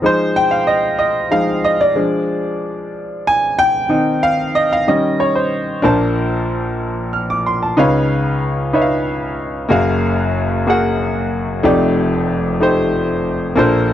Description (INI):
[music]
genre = gospel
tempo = 62 BPM (dotted quarters)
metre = 6/8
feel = straight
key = unclear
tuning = A4 = 436 Hz
[part]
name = clear grand piano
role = solo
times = 0.0-13.9 s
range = F1 to F6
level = -14 LUFS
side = equal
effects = none
[sound]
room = light reverb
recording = dry, close 1970s-style studio recording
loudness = -14 LUFS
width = side -11 dB against mid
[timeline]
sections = 0.0-5.8 A section; 5.8-13.9 B section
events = grand piano solo 0.0-5.8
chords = 0.0 Fm7; 2.0 Fm69; 3.9 Eb69; 4.9 Eb7; 5.8 Bbmaj9; 7.8 Db9; 9.7 Gbmaj9; 11.6 F13